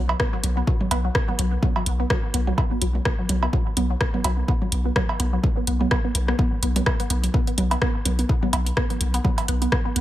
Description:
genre	minimal techno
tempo	126 BPM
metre	4/4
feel	swing 56% on 16ths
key	unclear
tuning	A4 = 436 Hz
part	resonant blip pluck	riff	0.0-10.0 s	F#3 to B3	-28 LUFS	equal	phaser, sidechain pumping, tape echo
part	punchy sub bass	bass	0.0-10.0 s	B1	-23 LUFS	equal	sidechain pumping
part	electronic cowbell and toms	percussion	0.1-9.8 s	none	-29 LUFS	right 3 dB	analog delay
part	electronic kick drum	drums	0.2-9.8 s	none	-23 LUFS	equal	none
part	techno drum kit	drums	0.2-10.0 s	hi-hat, rim click	-27 LUFS	equal	overdrive
room	digital ambience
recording	echo-heavy mix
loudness	-20 LUFS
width	side -14 dB against mid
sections	0.0-10.0 A section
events	none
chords	none

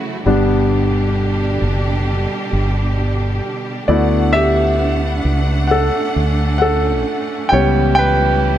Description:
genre	pop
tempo	66 BPM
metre	4/4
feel	straight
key	D major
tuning	A4 = 439 Hz
part	clear concert grand piano	accompaniment	0.0-8.6 s	G3 to G5	-16 LUFS	left 1 dB	none
part	bright studio string section	sustained chords	0.0-8.6 s	B2 to F#5	-22 LUFS	right 2 dB	none
part	mellow fretless electric bass	bass	0.3-8.6 s	F#1 to D2	-17 LUFS	equal	none
room	light reverb, small room ambience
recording	none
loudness	-14 LUFS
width	side -11 dB against mid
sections	0.0-8.6 A section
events	grand piano solo 0.0-8.6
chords	0.3 G; 3.9 D6; 7.5 A7

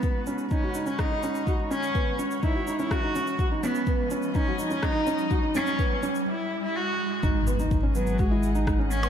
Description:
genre	piano and strings electronica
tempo	125 BPM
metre	4/4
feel	straight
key	G# minor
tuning	A4 = 439 Hz
part	warm cello	melody	0.0-9.1 s	F#3 to F#4	-29 LUFS	equal	ping-pong delay
part	muted string quartet	sustained chords	0.0-9.1 s	G#3 to F#5	-37 LUFS	equal	sidechain pumping, low-pass filter
part	felt-muted upright piano	riff	0.0-9.1 s	B3 to F#4	-30 LUFS	right 2 dB	ping-pong delay
part	electronic kick drum	drums	0.0-8.8 s	none	-27 LUFS	left 1 dB	none
part	electronic shaker, rim click and percussion blips	drums	0.0-9.1 s	none	-38 LUFS	right 1 dB	overdrive
part	riser and impact	sound effects	0.2-9.1 s	none	-35 LUFS	right 1 dB	none
part	round analog bass	bass	7.2-9.1 s	G#1	-27 LUFS	left 1 dB	sidechain pumping
room	moderate lush hall reverb, RT60 2.0 s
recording	dark, warm production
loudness	-24 LUFS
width	side -9 dB against mid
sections	0.0-7.2 A section; 7.2-9.1 B section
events	build-up 0.0-7.2; filter sweep on string quartet 0.0-7.2; filter sweep on cello 0.0-7.2; riser 0.2-7.2; break 6.3-7.2; drop 7.2-9.1; impact 7.2-9.1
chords	0.0 G#m7

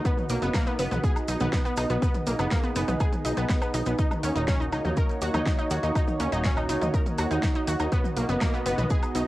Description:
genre	melodic techno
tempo	122 BPM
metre	4/4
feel	straight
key	unclear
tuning	A4 = 440 Hz
part	warm analog pad	sustained chords	0.0-9.3 s	Bb3 to D#5	-32 LUFS	right 1 dB	chorus, sidechain pumping, cassette tape
part	wide unison pluck	arpeggios	0.1-9.2 s	Bb3 to Bb5	-29 LUFS	equal	sidechain pumping, cassette tape, analog delay
part	deep house drum kit	drums	0.1-9.2 s	hi-hat, snare drum, toms, woodblock	-33 LUFS	equal	sidechain pumping on hats, sidechain pumping on cymbals, sidechain pumping on toms, sidechain pumping on perc
part	electronic kick drum	drums	0.1-9.0 s	none	-25 LUFS	equal	none
part	maracas	percussion	0.1-9.3 s	none	-45 LUFS	right 8 dB	none
part	plucky analog bass	bass	0.3-9.2 s	Eb1 to Eb2	-28 LUFS	equal	sidechain pumping
room	light reverb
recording	home recording on cassette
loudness	-23 LUFS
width	side -16 dB against mid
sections	0.0-9.3 A section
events	none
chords	0.1 B; 4.0 Ebm7; 7.9 B

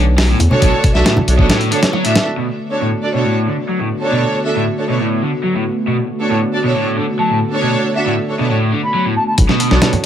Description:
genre	breakbeat, breaks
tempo	137 BPM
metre	4/4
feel	straight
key	B dorian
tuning	A4 = 440 Hz
part	warbly tape-like pad	sustained chords	0.0-10.1 s	D3 to G#5	-22 LUFS	equal	chorus, built-in reverb, vintage 12-bit sampler grit, sidechain pumping
part	crunchy overdriven guitar	riff	0.0-9.9 s	A2 to F#3	-18 LUFS	equal	low-pass filter, tape echo
part	saturated sub bass	bass	0.0-1.5, 9.4-9.8 s	B1 to E2	-14 LUFS	equal	none
part	dusty soul sampler-style drum kit	drums	0.2-2.3, 9.4-10.1 s	hi-hat, kick drum, snare drum	-14 LUFS	equal	small room ambience
part	bongos and congas	percussion	0.4-2.4, 9.4-10.0 s	none	-20 LUFS	right 1 dB	none
part	warm studio string section	stabs	0.5-10.1 s	D4 to E5	-19 LUFS	right 2 dB	tape echo
part	silver concert flute	melody	7.2-9.3 s	F#5 to B5	-20 LUFS	left 1 dB	old record sound, tape echo
room	moderate small room reverb, RT60 0.6 s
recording	none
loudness	-13 LUFS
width	side -10 dB against mid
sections	0.0-2.4 A section; 2.4-9.4 B section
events	break 1.5-2.4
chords	0.0 Bm7

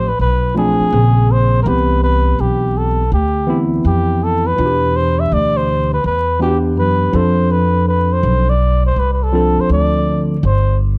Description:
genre	hip hop, jazz-hop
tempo	82 BPM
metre	4/4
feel	swing 65% on 16ths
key	unclear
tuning	A4 = 441 Hz
part	trumpet with cup mute	melody	0.0-10.8 s	G4 to E5	-20 LUFS	equal	none
part	tine electric piano	accompaniment	0.0-10.4 s	B2 to A4	-20 LUFS	equal	none
part	upright bass	bass	0.0-11.0 s	G1 to F#2	-18 LUFS	equal	none
room	small room ambience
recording	dark, warm production, vinyl crackle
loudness	-15 LUFS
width	mono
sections	0.0-11.0 A section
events	none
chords	0.0 G9sus4 (rootless); 0.9 Bbm9; 1.7 Cmaj7; 4.6 Em7; 7.1 F6; 10.4 N.C.

